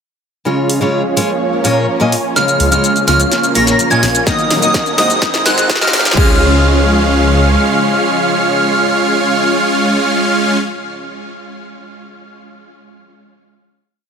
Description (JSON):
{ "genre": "EDM, festival progressive house", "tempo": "126 BPM", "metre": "4/4", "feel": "straight", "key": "Db major", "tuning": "A4 = 440 Hz", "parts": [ { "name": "picked steel-string acoustic guitar", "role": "accompaniment", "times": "0.5-10.6 s", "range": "Ab2 to Eb5", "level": "-19 LUFS", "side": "left 2 dB", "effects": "sidechain pumping, ping-pong delay" }, { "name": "supersaw pad", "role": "sustained chords", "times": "0.5-10.6 s", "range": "C3 to Db5", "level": "-23 LUFS", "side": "equal", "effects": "sidechain pumping" }, { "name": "supersaw chords", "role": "riff", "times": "0.5-10.6 s", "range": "Gb3 to Bb5", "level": "-16 LUFS", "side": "right 1 dB", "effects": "phaser, sidechain pumping, low-pass filter, ping-pong delay" }, { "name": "big-room dance drum kit", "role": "drums", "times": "0.7-6.3 s", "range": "crash cymbal, hi-hat, shaker, snare drum", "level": "-19 LUFS", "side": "left 1 dB", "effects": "none" }, { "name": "swell and riser", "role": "sound effects", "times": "1.9-6.2 s", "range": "none", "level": "-27 LUFS", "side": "right 1 dB", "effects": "none" }, { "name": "plucky unison lead", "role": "arpeggios", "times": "2.4-10.6 s", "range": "Eb6 to Bb6", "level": "-16 LUFS", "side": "equal", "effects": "sidechain pumping, ping-pong delay" }, { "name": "wide detuned saw bass", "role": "bass", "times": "2.6-7.6 s", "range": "Eb1 to Db2", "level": "-16 LUFS", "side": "equal", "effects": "chorus, sidechain pumping" }, { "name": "electronic kick drum", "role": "drums", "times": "4.3-6.3 s", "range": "none", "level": "-15 LUFS", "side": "equal", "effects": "none" } ], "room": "moderate huge ambient reverb, RT60 7.7 s", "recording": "high-pass filter", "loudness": "-10 LUFS", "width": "side -6 dB against mid", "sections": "0.5-2.4 intro; 2.4-6.2 build; 6.2-10.0 final chord", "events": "build-up 2.4-6.2; drum fill 2.4-6.2; riser 2.4-6.2; filter sweep on supersaw synth 2.4-6.2; filter sweep 2.4-6.2", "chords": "0.5 Db; 1.4 Bbm; 2.4 Db; 3.3 Bbm; 4.3 Ebm; 5.2 Ab; 6.2 Db" }